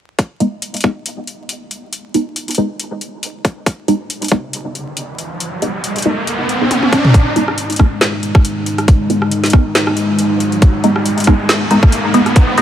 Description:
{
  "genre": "deep dubstep",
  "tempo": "138 BPM",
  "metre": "4/4",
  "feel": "swing 55% on 16ths, half-time",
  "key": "G# minor",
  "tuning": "A4 = 438 Hz",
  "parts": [
    { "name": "electronic kick drum", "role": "drums", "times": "0.2-12.5 s", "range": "none", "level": "-9 LUFS", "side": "equal", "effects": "high-pass filter on kick" },
    { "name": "garage drum kit", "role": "drums", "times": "0.2-12.6 s", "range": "hi-hat, rim click, snare drum, toms", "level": "-18 LUFS", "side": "equal", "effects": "none" },
    { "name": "filtered dub chord stab", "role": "stabs", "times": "0.4-12.6 s", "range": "G#3 to D#4", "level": "-18 LUFS", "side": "right 1 dB", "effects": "phaser, wide subtle chorus, dub echo" },
    { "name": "riser", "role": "sound effects", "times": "4.7-12.6 s", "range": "none", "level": "-20 LUFS", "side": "right 1 dB", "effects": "none" },
    { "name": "dark analog pad", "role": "sustained chords", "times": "7.1-12.6 s", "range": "G#3 to D#4", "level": "-18 LUFS", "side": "left 1 dB", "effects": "chorus" }
  ],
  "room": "light reverb",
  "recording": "vinyl crackle",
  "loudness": "-12 LUFS",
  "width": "side -10 dB against mid",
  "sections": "0.2-7.1 A section; 7.1-12.6 B section",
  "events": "riser 4.7-7.1, 7.1-12.6; drum fill 6.7-7.1; build-up 7.1-12.6; filter sweep on synth stab 7.1-12.6",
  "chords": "0.2 G#m; 7.1 G#5"
}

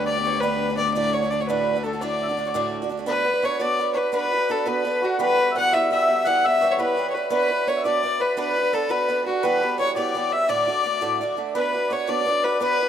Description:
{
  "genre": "celtic folk",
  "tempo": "113 BPM (dotted quarters)",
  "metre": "6/8",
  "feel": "straight",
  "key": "unclear",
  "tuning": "A4 = 441 Hz",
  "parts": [
    { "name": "clear fiddle", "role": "melody", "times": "0.0-12.9 s", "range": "F#4 to F#5", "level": "-23 LUFS", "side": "left 3 dB", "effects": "none" },
    { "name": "mellow accordion", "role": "second line", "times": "0.0-12.9 s", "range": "F#4 to F#5", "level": "-28 LUFS", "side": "left 5 dB", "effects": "none" },
    { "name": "picked swing-style acoustic guitar", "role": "accompaniment", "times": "0.0-12.9 s", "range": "D2 to B4", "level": "-26 LUFS", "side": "right 6 dB", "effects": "none" },
    { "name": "bright cello", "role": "drone", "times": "0.0-3.1 s", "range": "D2", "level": "-30 LUFS", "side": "left 3 dB", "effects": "stereo widening" },
    { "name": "hammered dulcimer", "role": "second line", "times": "3.1-12.9 s", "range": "F#4 to F#5", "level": "-28 LUFS", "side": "right 2 dB", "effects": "none" }
  ],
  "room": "light reverb, studio reverb",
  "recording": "rough home demo mix",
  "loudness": "-20 LUFS",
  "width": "side -9 dB against mid",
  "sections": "0.0-3.1 A section; 3.1-11.5 B section; 11.5-12.9 B section",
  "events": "none",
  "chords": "0.0 G; 1.0 D; 3.1 Bm; 5.2 Em; 7.3 Bm; 9.4 Em; 10.5 D; 11.5 Bm"
}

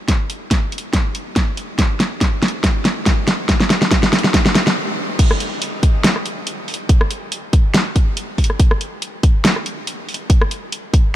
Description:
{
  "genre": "future bass",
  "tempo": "141 BPM",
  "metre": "4/4",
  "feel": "swing 54% on 16ths, half-time",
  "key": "none",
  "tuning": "none",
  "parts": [
    { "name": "electronic kick drum", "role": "drums", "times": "0.1-11.0 s", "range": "none", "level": "-15 LUFS", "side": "equal", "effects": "none" },
    { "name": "pop drum kit", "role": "drums", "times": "0.1-11.0 s", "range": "crash cymbal, hi-hat, rim click, snare drum", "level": "-18 LUFS", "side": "equal", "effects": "none" }
  ],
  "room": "light reverb, digital ambience",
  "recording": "none",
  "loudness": "-15 LUFS",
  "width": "side -13 dB against mid",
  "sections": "0.0-5.2 A section; 5.2-11.2 B section",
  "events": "build-up 0.0-5.2; drum fill 0.0-4.8; stop 4.8-5.2; drop 5.2-11.2",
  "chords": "none"
}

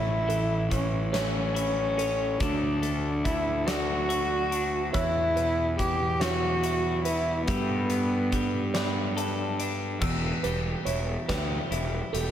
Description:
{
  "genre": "post-rock",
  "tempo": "47 BPM (dotted quarters)",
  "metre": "6/8",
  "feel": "straight",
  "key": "E dorian",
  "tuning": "A4 = 440 Hz",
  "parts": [
    { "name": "muted cello", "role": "melody", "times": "0.0-9.1 s", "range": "B3 to G4", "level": "-28 LUFS", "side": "equal", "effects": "digital delay" },
    { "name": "felt-muted upright piano", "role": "arpeggios", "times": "0.0-12.3 s", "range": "A4 to D5", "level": "-37 LUFS", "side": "right 7 dB", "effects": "digital delay" },
    { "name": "twelve-string electric guitar", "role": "arpeggios", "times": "0.0-12.3 s", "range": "E2 to A4", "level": "-33 LUFS", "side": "left 1 dB", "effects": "spring reverb, digital delay" },
    { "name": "fuzz fingered electric bass", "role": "bass", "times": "0.0-12.3 s", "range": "E1 to G2", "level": "-30 LUFS", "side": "equal", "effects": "overdrive" },
    { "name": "huge arena drum kit", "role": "drums", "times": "0.3-12.3 s", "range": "crash cymbal, hi-hat, kick drum, snare drum", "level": "-33 LUFS", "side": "left 1 dB", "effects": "none" },
    { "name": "pedal steel guitar", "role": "sustained chords", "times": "4.9-12.3 s", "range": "A4 to E6", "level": "-41 LUFS", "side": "left 2 dB", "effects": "lush chorus" }
  ],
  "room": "light reverb, studio ambience",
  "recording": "none",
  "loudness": "-25 LUFS",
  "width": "side -10 dB against mid",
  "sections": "0.0-10.0 A section; 10.0-12.3 B section",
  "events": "none",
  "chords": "0.0 A; 2.4 D; 4.9 Em; 7.5 Gadd9; 10.0 Em"
}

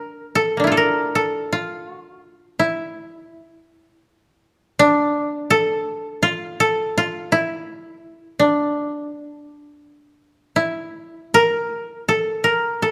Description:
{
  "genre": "japanese traditional",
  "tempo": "82 BPM",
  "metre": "4/4",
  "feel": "uneven beats, rubato",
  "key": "A miyako bushi",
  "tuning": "A4 = 440 Hz",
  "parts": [
    { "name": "koto", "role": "solo", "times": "0.0-12.9 s", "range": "Bb3 to Bb4", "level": "-20 LUFS", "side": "equal", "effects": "none" }
  ],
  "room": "moderate recital hall reverb, RT60 1.6 s",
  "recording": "dark, warm production",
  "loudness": "-20 LUFS",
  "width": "mono",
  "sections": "0.0-12.9 A section",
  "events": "none",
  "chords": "none"
}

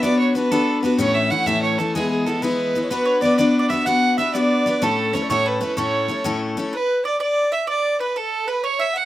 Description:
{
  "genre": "celtic folk, Celtic jig",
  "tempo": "126 BPM (dotted quarters)",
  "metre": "6/8",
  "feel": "straight",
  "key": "A major",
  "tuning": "A4 = 441 Hz",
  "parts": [
    { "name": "warm fiddle", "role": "melody", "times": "0.0-9.1 s", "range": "G#4 to F#5", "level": "-22 LUFS", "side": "right 3 dB", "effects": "none" },
    { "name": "baroque flute", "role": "second line", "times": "0.0-9.1 s", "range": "G#4 to F#5", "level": "-28 LUFS", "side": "left 4 dB", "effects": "none" },
    { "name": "picked steel-string acoustic guitar", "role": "accompaniment", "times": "0.0-6.7 s", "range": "A2 to B4", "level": "-20 LUFS", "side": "left 2 dB", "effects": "none" },
    { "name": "bowl-back mandolin", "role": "second line", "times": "2.9-9.1 s", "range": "A4 to F#5", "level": "-27 LUFS", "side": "right 5 dB", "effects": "none" }
  ],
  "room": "moderate studio reverb, RT60 0.5 s",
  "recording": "rough home demo mix",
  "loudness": "-18 LUFS",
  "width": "side -14 dB against mid",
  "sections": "0.0-6.7 A section; 6.7-9.1 A section",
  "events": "none",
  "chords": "0.0 Bm; 1.0 A; 1.9 E; 2.9 Bm; 4.8 A; 6.7 N.C."
}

